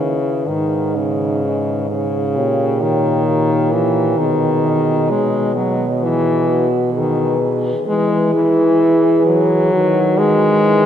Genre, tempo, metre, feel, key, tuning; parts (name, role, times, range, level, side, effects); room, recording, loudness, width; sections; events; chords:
classical, lyrical piece for horn quartet; 65 BPM; 4/4; rubato; A4 = 440 Hz
mellow French horn; melody; 0.0-10.9 s; B4 to D#5; -23 LUFS; left 6 dB
mellow French horn; second line; 0.0-10.9 s; D#4 to G#4; -22 LUFS; right 6 dB
clear French horn; accompaniment; 0.0-10.9 s; C#3 to G#3; -17 LUFS; left 2 dB
mellow French horn; bass; 0.0-10.9 s; G#2 to E3; -19 LUFS; right 2 dB
wet cathedral reverb, RT60 5.7 s; -14 LUFS; side -9 dB against mid
0.0-10.9 A section
0.5 G#m; 2.4 D#7/A#; 4.2 G#m/B; 7.9 E; 9.7 B/D#